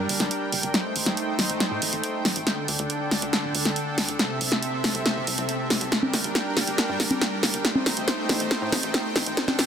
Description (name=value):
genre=uplifting trance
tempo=139 BPM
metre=4/4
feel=straight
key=unclear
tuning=A4 = 438 Hz
part: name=supersaw pad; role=sustained chords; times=0.0-9.7 s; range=C3 to G5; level=-28 LUFS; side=right 1 dB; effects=none
part: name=tight sequencer bass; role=bass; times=0.0-9.7 s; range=D1 to A2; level=-36 LUFS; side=equal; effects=high-pass filter
part: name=punchy analog drum machine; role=drums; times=0.1-9.7 s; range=congas, hi-hat, snare drum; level=-24 LUFS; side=equal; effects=none
room=light reverb, digital ambience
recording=dense, heavily limited modern master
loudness=-22 LUFS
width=side -8 dB against mid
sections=0.0-9.7 A section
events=build-up 0.0-9.7; drum fill 0.0-9.7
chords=0.0 Gm; 0.7 Am7b5; 2.5 Dsus4; 4.2 C6; 5.9 Gm; 7.6 Am7b5